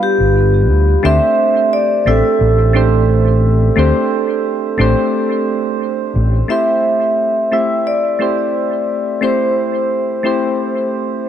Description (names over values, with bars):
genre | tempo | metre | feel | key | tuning
sunset chillout | 88 BPM | 4/4 | swing 53% on 16ths | A minor | A4 = 441 Hz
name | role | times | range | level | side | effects
vibraphone with medium mallets | melody | 0.0-11.3 s | G4 to E5 | -16 LUFS | equal | tape echo
soft electric-piano-like synth keys | accompaniment | 0.0-11.3 s | G3 to E5 | -17 LUFS | moving between left 4 dB and right 7 dB | chorus, auto-pan, vintage 12-bit sampler grit, tape echo
overdriven fingered electric bass | bass | 0.2-6.4 s | G1 to D2 | -13 LUFS | equal | none
room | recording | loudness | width
moderate plate reverb, RT60 2.9 s | none | -12 LUFS | side -10 dB against mid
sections
0.0-6.5 A section; 6.5-11.3 B section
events
none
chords
0.0 G7; 1.0 D7sus4; 6.5 Am7